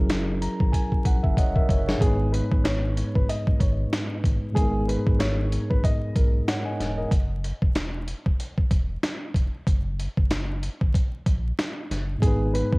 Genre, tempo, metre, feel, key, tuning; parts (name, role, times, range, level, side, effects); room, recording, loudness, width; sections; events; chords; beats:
hip hop, boom-bap hip-hop; 94 BPM; 4/4; swing 58% on 16ths; A4 = 441 Hz
mellow tine electric piano; accompaniment; 0.0-7.1, 12.2-12.8 s; G#2 to A#5; -27 LUFS; equal; fast stereo tremolo, cassette tape
warm sub bass; bass; 0.0-12.8 s; D#1 to B1; -28 LUFS; equal; tube saturation
dusty soul sampler-style drum kit; drums; 0.1-12.8 s; hi-hat, kick drum, snare drum; -23 LUFS; equal
dark upright piano; melody; 2.0-6.4, 12.2-12.8 s; G#4 to D#5; -32 LUFS; equal; cassette tape, tape echo
digital ambience; home recording on cassette, vinyl crackle; -22 LUFS; side -26 dB against mid
0.0-12.8 A section
drum fill 0.7-2.0; break 7.1-12.2
0.0 F#7; 2.0 G#madd9; 7.1 F#7(no3); 12.2 G#m
0.09 0.73 1.37 | 2.01 2.65 3.28 3.92 | 4.56 5.20 5.84 6.48 | 7.11 7.75 8.39 9.03 | 9.67 10.31 10.94 11.58 | 12.22